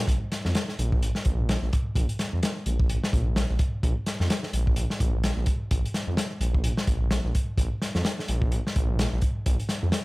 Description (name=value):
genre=breakbeat, breaks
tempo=128 BPM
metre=4/4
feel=swing 58% on 16ths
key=unclear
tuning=A4 = 440 Hz
part: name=detuned saw bass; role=bass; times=0.0-9.9 s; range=Bb1 to F2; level=-26 LUFS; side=equal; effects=none
part: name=crunchy breakbeat drum kit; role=drums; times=0.1-10.0 s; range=hi-hat, kick drum, snare drum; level=-25 LUFS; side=equal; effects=none
room=little or no reverb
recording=none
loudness=-24 LUFS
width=side -22 dB against mid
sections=0.0-10.0 A section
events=none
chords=none